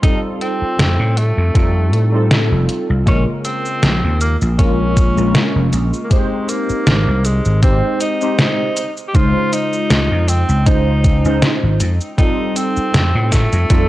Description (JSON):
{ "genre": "vaporwave", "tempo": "79 BPM", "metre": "4/4", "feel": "swing 54% on 16ths", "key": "unclear", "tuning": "A4 = 440 Hz", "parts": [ { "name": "clear tenor saxophone", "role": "melody", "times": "0.0-13.9 s", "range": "Ab3 to G4", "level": "-22 LUFS", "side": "equal", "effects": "tape echo" }, { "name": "warbly lo-fi synth keys", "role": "accompaniment", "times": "0.0-13.9 s", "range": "Db3 to C5", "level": "-20 LUFS", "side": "equal", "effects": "wide subtle chorus, vintage 12-bit sampler grit, analog delay" }, { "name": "detuned 8-bit digital drum machine", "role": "drums", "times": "0.0-13.9 s", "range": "cabasa, hi-hat, snare drum", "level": "-18 LUFS", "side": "equal", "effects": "none" }, { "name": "electronic kick drum", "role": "drums", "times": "0.0-13.9 s", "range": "none", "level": "-14 LUFS", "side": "equal", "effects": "none" }, { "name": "vintage slap bass", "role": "bass", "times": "0.6-13.9 s", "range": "F1 to A2", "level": "-15 LUFS", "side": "equal", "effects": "none" } ], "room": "digital ambience", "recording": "dry, gritty hardware recording, cassette tape", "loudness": "-13 LUFS", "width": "side -16 dB against mid", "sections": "0.0-13.9 A section", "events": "none", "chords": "0.0 F9; 3.1 Bbm7; 6.1 Abmaj7; 8.8 Dbmaj9; 11.8 F9" }